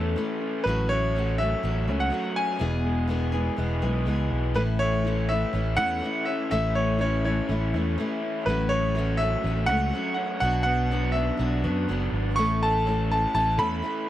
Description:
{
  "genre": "rock",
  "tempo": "123 BPM",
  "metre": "4/4",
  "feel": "straight",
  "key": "A major",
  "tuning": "A4 = 439 Hz",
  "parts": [
    { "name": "bright grand piano", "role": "melody", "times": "0.0-14.0 s", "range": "B4 to C#6", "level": "-27 LUFS", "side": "equal", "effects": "none" },
    { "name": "picked steel-string acoustic guitar", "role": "accompaniment", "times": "0.0-14.1 s", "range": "E2 to A4", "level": "-30 LUFS", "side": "left 3 dB", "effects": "none" },
    { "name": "raw garage guitar", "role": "riff", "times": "0.0-14.1 s", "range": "E2 to D4", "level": "-32 LUFS", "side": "right 1 dB", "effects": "overdrive" },
    { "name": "fingered electric bass", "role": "bass", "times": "0.0-13.8 s", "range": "E1 to F#2", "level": "-26 LUFS", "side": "equal", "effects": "none" }
  ],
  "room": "small room ambience",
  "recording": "dry, close 1970s-style studio recording",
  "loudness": "-23 LUFS",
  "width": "side -13 dB against mid",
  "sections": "0.0-4.6 A section; 4.6-14.1 A section",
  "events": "none",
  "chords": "0.0 A; 0.7 F#m/A; 2.6 E; 4.6 A; 8.5 F#m/A; 10.4 Bm; 12.4 A"
}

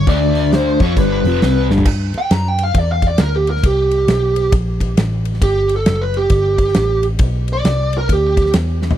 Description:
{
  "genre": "blues rock power trio and southern rock",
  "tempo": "135 BPM",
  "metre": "4/4",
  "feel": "swing 63% on 8ths",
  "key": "G major",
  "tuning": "A4 = 441 Hz",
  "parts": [
    { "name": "smooth overdriven lead guitar", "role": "melody", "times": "0.0-8.5 s", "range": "G4 to Bb5", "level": "-18 LUFS", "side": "right 2 dB", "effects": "none" },
    { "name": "crunchy overdriven guitar", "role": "riff", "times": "0.0-1.9 s", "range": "F2 to F4", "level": "-16 LUFS", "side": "left 1 dB", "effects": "harmonic tremolo" },
    { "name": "vintage muted picked electric bass", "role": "bass", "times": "0.0-9.0 s", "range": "F1 to G2", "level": "-18 LUFS", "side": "equal", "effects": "none" },
    { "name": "big rock drum kit", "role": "drums", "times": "0.1-9.0 s", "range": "crash cymbal, hi-hat, kick drum, ride cymbal, snare drum, toms", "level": "-18 LUFS", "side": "equal", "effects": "none" }
  ],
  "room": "little or no reverb",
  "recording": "dry, close 1970s-style studio recording",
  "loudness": "-13 LUFS",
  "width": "side -11 dB against mid",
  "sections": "0.0-1.9 A section; 1.9-9.0 B section",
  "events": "drum fill 1.6, 8.8; lead electric guitar solo 1.9-9.0",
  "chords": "0.1 D5; 0.7 G; 1.9 G5; 3.6 C5; 5.4 G"
}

